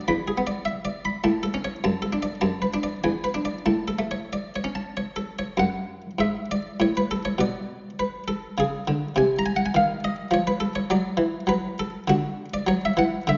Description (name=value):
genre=classical, baroque-style suite movement for harpsichord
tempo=102 BPM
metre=3/4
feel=rubato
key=A major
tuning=A4 = 440 Hz
part: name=buff-stop harpsichord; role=solo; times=0.0-13.4 s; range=E2 to B5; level=-25 LUFS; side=equal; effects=none
room=wet recital hall reverb, RT60 1.6 s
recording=nothing above 7.5 kHz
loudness=-25 LUFS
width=mono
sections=0.0-5.6 A section; 5.6-13.4 A section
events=none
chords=0.1 E7; 1.2 A; 1.8 D/F#; 2.4 Bm7/F#; 3.0 E7; 3.7 A; 5.6 E9/F#; 6.8 N.C.; 7.4 G#dim/B; 9.1 Cmadd11; 10.3 N.C.; 10.9 D; 12.6 F#5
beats=| 0.08 0.66 1.25 | 1.84 2.44 3.04 | 3.67 4.32 4.95 | 5.57 6.18 6.78 | 7.37 7.97 8.55 | 9.14 9.73 10.30 | 10.88 11.47 12.06 | 12.64 13.22